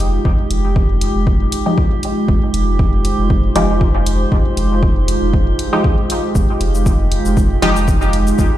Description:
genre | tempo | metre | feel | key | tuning
dub techno | 118 BPM | 4/4 | swing 55% on 16ths | F minor | A4 = 441 Hz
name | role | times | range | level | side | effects
warbly tape-like pad | sustained chords | 0.0-8.6 s | Ab3 to C5 | -21 LUFS | right 2 dB | chorus, built-in reverb, sidechain pumping
round analog bass | bass | 0.0-8.5 s | F1 | -18 LUFS | equal | sidechain pumping
electronic hi-hat and shaker | drums | 0.0-8.5 s | none | -28 LUFS | left 1 dB | none
drifting glass-harmonics texture | texture | 0.0-8.6 s | G4 | -27 LUFS | right 1 dB | chorus, built-in reverb, sidechain pumping
electronic kick drum | drums | 0.3-8.5 s | none | -15 LUFS | equal | none
filtered dub chord stab | stabs | 1.7-7.8 s | F3 to G4 | -20 LUFS | equal | chorus, phaser, sidechain pumping, dub echo
room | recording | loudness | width
digital ambience | played on a big sound system in a bare room, large studio reverb | -13 LUFS | side -13 dB against mid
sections
0.0-8.6 A section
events
none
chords
0.0 Fm9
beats
| 0.25 0.76 1.27 1.78 | 2.29 2.79 3.30 3.81 | 4.32 4.83 5.34 5.84 | 6.35 6.86 7.37 7.88 | 8.39

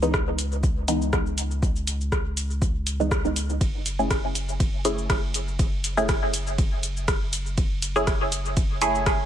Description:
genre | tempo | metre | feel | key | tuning
dub techno | 121 BPM | 4/4 | swing 54% on 16ths | F# dorian | A4 = 440 Hz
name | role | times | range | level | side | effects
filtered dub chord stab | stabs | 0.0-9.3 s | E3 to G#4 | -26 LUFS | right 1 dB | chorus, phaser, dub echo
warm sub bass | bass | 0.0-9.3 s | F#1 to C#2 | -29 LUFS | equal | sidechain pumping
punchy analog drum machine | drums | 0.0-9.2 s | hi-hat, ride cymbal, rim click, shaker | -29 LUFS | equal | none
electronic kick drum | drums | 0.1-9.2 s | none | -24 LUFS | equal | overdrive
room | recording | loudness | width
digital ambience | none | -22 LUFS | side -10 dB against mid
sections
0.0-3.6 A section; 3.6-9.3 A section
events
filter sweep on synth stab 0.0-3.6; band accent 3.1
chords
0.0 C#m9; 3.6 F#m9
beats
0.14 0.63 1.13 | 1.63 2.12 2.62 3.11 | 3.61 4.11 4.60 5.10 | 5.59 6.09 6.58 7.08 | 7.58 8.07 8.57 9.06

